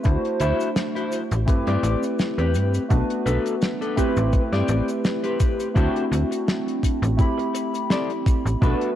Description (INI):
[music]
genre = vaporwave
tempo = 84 BPM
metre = 4/4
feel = swing 55% on 16ths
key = A dorian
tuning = A4 = 440 Hz
[part]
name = warbly lo-fi synth keys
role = accompaniment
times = 0.0-9.0 s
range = A3 to B5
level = -24 LUFS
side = equal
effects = wide subtle chorus, vintage 12-bit sampler grit, tape echo
[part]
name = damped 70s drum kit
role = drums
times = 0.0-8.9 s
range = cabasa, hi-hat, snare drum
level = -28 LUFS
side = equal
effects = none
[part]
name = slap-like FM bass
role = bass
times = 0.1-8.7 s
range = A1 to G2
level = -22 LUFS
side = equal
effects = none
[part]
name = electronic kick drum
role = drums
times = 0.1-8.8 s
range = none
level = -20 LUFS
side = equal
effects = none
[part]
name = clean electric guitar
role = riff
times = 0.4-8.9 s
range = C4 to D5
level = -28 LUFS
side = left 3 dB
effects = lush chorus, tape echo
[sound]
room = light reverb, small room ambience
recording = dark, warm production, cassette tape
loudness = -20 LUFS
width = side -11 dB against mid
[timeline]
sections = 0.0-5.8 A section; 5.8-9.0 B section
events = none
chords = 0.1 D9; 1.5 Am9; 2.9 Bm7; 4.0 Am9; 5.8 D9; 7.2 Am9